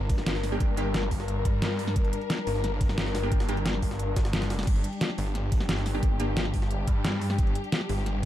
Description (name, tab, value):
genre	dark technical drum and bass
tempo	177 BPM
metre	4/4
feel	straight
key	G minor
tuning	A4 = 445 Hz
part	dark studio string section	sustained chords	0.0-8.3 s	G3 to Bb4	-34 LUFS	left 3 dB	sidechain pumping
part	snarling distorted saw bass	bass	0.0-8.3 s	G1 to G2	-30 LUFS	equal	distortion, sidechain pumping
part	dubstep drum kit	drums	0.1-8.3 s	crash cymbal, hi-hat, snare drum	-31 LUFS	equal	studio reverb
part	electronic kick drum	drums	0.1-7.5 s	none	-26 LUFS	equal	overdrive, studio reverb
part	jungle sampler-style drum kit	drums	0.1-8.1 s	hi-hat, snare drum	-42 LUFS	equal	high-pass filter on hats, studio reverb, high-pass filter on snare
part	orchestra-hit-like synth stab	stabs	0.5-0.9, 3.2-3.6, 5.9-6.3 s	Bb3 to G4	-34 LUFS	right 1 dB	built-in reverb, tape echo
room	digital ambience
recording	dark, warm production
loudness	-25 LUFS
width	side -13 dB against mid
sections	0.0-8.3 A section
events	kick drops out 4.3-4.7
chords	0.0 Gm